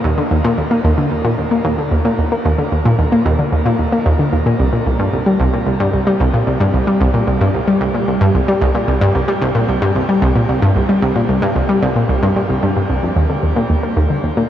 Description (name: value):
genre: ambient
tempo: 112 BPM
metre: 4/4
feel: straight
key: unclear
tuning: A4 = 438 Hz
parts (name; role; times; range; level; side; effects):
- analog pluck; solo; 0.0-14.5 s; C2 to Bb3; -13 LUFS; equal; chorus, tape echo
room: wet shimmer reverb, RT60 8.4 s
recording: worn, warbling old tape, cassette tape, warbly pitch drift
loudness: -13 LUFS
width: side -11 dB against mid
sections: 0.0-14.5 A section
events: none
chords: none